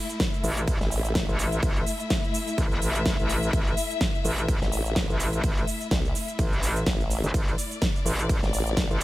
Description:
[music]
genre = bass house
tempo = 126 BPM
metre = 4/4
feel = swing 56% on 16ths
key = unclear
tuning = A4 = 440 Hz
[part]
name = warm symphonic string section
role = sustained chords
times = 0.0-9.0 s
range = A3 to E5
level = -32 LUFS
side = left 3 dB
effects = sidechain pumping
[part]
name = big-room dance drum kit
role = drums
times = 0.1-9.0 s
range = cabasa, hi-hat, ride cymbal, snare drum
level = -31 LUFS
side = right 1 dB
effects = none
[part]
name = electronic kick drum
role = drums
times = 0.2-8.9 s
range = none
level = -27 LUFS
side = equal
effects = none
[part]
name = metallic wobble bass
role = bass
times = 0.4-9.0 s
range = G1 to A1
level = -26 LUFS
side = equal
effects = chorus, tube saturation, sidechain pumping
[part]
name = formant-sweep wobble bass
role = bass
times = 0.8-1.3, 4.6-8.9 s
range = A1 to C2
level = -28 LUFS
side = equal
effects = chorus, tube saturation, sidechain pumping
[sound]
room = little or no reverb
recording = none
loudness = -23 LUFS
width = side -16 dB against mid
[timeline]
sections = 0.0-9.0 A section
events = none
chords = 0.0 A5

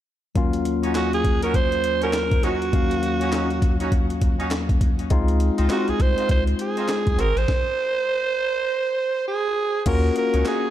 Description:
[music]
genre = R&B, new jack swing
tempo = 101 BPM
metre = 4/4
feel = swing 61% on 16ths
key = Eb dorian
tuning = A4 = 440 Hz
[part]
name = barky tine electric piano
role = accompaniment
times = 0.3-10.7 s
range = Eb2 to F5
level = -24 LUFS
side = left 4 dB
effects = shimmer reverb
[part]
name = breakbeat sampler-style drum kit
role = drums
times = 0.4-10.6 s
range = crash cymbal, handclaps, hi-hat, kick drum, snare drum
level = -23 LUFS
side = equal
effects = none
[part]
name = clear horn section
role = stabs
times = 0.8-10.6 s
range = C4 to Ab4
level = -32 LUFS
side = right 2 dB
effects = ping-pong delay, shimmer reverb
[part]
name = raspy alto saxophone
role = melody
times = 1.0-10.7 s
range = Gb4 to C5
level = -23 LUFS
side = right 3 dB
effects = shimmer reverb
[part]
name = round analog bass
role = bass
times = 5.1-10.4 s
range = Ab1 to Eb2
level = -21 LUFS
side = equal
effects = none
[sound]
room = moderate echo chamber reverb, RT60 2.1 s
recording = dark, warm production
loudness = -19 LUFS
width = side -12 dB against mid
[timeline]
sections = 0.4-9.9 A section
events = stop 7.5-9.9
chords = 0.4 Ebm7; 5.1 Dbmaj9; 7.2 Ab7; 9.9 Ebm7

